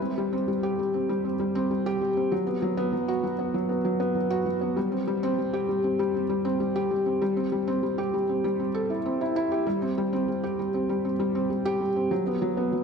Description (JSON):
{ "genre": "electronica", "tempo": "98 BPM", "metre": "4/4", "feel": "straight", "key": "unclear", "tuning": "A4 = 440 Hz", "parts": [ { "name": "felt-muted upright piano", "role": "solo", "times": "0.0-12.8 s", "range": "F#3 to A4", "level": "-24 LUFS", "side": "equal", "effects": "none" } ], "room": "wet concert hall reverb, RT60 1.8 s", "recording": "none", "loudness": "-24 LUFS", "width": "side -6 dB against mid", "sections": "0.0-12.8 A section", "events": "none", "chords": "none" }